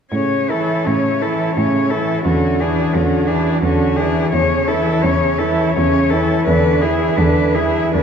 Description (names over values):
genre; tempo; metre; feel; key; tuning
classical, lyrical piece for cello ensemble; 85 BPM; 3/4; uneven beats, rubato; A major; A4 = 436 Hz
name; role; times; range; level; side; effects
rich cello; melody; 0.1-8.0 s; F#4 to C#5; -20 LUFS; left 5 dB; none
rich cello; second line; 0.1-8.0 s; C#4 to E4; -20 LUFS; right 5 dB; none
rich cello; accompaniment; 0.1-8.0 s; C#3 to E3; -20 LUFS; left 1 dB; none
rich cello; bass; 0.1-8.0 s; E2 to A2; -20 LUFS; right 1 dB; none
room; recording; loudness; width
wet cathedral reverb, RT60 4.9 s; recorded in a church or concert hall; -14 LUFS; side -7 dB against mid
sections
0.1-8.0 A section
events
none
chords
0.1 A; 2.3 E13; 4.3 A/E; 6.5 E7